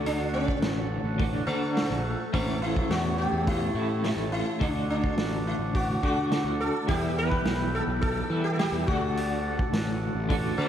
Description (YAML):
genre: psychedelic rock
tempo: 105 BPM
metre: 4/4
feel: straight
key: unclear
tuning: A4 = 438 Hz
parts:
  - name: sitar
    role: melody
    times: 0.0-10.7 s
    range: A3 to B4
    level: -30 LUFS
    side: equal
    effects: diffuse ambient delay
  - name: hand-pumped harmonium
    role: sustained chords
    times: 0.0-10.7 s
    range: E4 to A5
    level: -38 LUFS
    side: right 2 dB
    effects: stereo widening
  - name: twelve-string electric guitar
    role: riff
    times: 0.0-10.7 s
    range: A2 to F#4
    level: -31 LUFS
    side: equal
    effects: tremolo, double-tracked left and right
  - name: fuzz picked electric bass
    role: bass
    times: 0.0-10.7 s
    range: A1 to E3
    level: -30 LUFS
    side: equal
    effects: overdrive
  - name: vintage drum kit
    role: drums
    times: 0.1-10.4 s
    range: hi-hat, kick drum, snare drum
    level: -32 LUFS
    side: equal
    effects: none
room: moderate plate reverb, RT60 2.3 s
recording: dreamy mix soaked in reverb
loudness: -25 LUFS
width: side -10 dB against mid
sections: 0.0-10.7 A section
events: none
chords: 0.0 D; 2.3 A; 4.6 D; 6.9 Em; 8.9 D